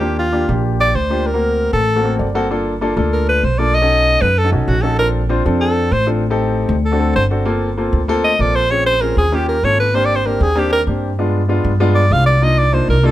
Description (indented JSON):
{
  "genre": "jazz",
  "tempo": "194 BPM",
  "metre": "4/4",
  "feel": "straight",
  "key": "G minor from 7.5 s",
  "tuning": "A4 = 440 Hz",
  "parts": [
    { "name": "clear alto saxophone", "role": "melody", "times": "0.0-13.1 s", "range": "C#4 to F5", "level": "-16 LUFS", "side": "equal", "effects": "none" },
    { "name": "warm grand piano", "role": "accompaniment", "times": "0.0-13.1 s", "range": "Ab3 to F#5", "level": "-19 LUFS", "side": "left 1 dB", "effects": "none" },
    { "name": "upright bass", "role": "bass", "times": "0.0-13.1 s", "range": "G1 to G2", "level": "-17 LUFS", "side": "equal", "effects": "none" }
  ],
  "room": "light reverb",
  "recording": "close, detailed microphones",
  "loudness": "-13 LUFS",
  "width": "side -14 dB against mid",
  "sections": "0.0-7.5 A section; 7.5-13.1 A section",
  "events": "alto saxophone solo 0.0-13.1; grand piano fill 2.0-2.5",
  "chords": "0.0 Ebmaj9; 1.3 D7b13; 2.5 Gm9; 3.7 B9; 5.0 Bbmaj9; 6.2 Am7b5; 6.8 D7; 7.5 Gm11; 8.7 Bbm7; 9.3 Eb9; 9.9 Abmaj9#11; 11.2 G7b9; 12.4 Cm11"
}